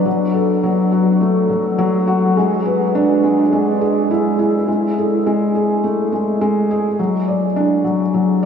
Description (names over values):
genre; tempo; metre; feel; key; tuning
electronica; 104 BPM; 4/4; straight; unclear; A4 = 440 Hz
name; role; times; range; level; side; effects
felt-muted upright piano; solo; 0.0-8.5 s; F#3 to D5; -14 LUFS; equal; tape echo
room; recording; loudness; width
wet huge ambient reverb, RT60 8.6 s; dreamy mix soaked in reverb; -14 LUFS; side -7 dB against mid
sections
0.0-4.7 A section; 4.7-8.5 B section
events
build-up 0.0-4.7; drop 4.7-8.5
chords
none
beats
| 0.06 0.64 1.21 1.79 | 2.37 2.94 3.52 4.10 | 4.68 5.25 5.83 6.41 | 6.98 7.56 8.14